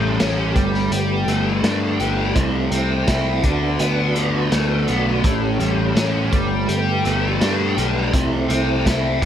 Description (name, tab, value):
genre	psychedelic rock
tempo	83 BPM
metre	4/4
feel	straight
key	unclear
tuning	A4 = 439 Hz
part	percussive tonewheel organ	sustained chords	0.0-9.2 s	A3 to G4	-25 LUFS	right 3 dB	slow rotary speaker, chorus vibrato
part	overdriven electric guitar	riff	0.0-9.3 s	A2 to G4	-20 LUFS	left 1 dB	flanger
part	fuzz picked electric bass	bass	0.0-9.3 s	G1 to G2	-22 LUFS	equal	overdrive
part	crunchy breakbeat drum kit	drums	0.2-9.3 s	hi-hat, kick drum, snare drum	-23 LUFS	equal	none
room	moderate plate reverb, RT60 1.9 s, small room ambience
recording	dreamy mix soaked in reverb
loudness	-17 LUFS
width	side -9 dB against mid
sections	0.0-9.3 A section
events	none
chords	0.0 A7; 0.6 Gadd9; 2.4 C6; 3.4 D6; 5.2 A7; 6.3 Gadd9; 8.1 C6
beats	0.20 0.92 1.64 | 2.36 3.08 3.80 4.52 | 5.25 5.97 6.69 7.41 | 8.14 8.86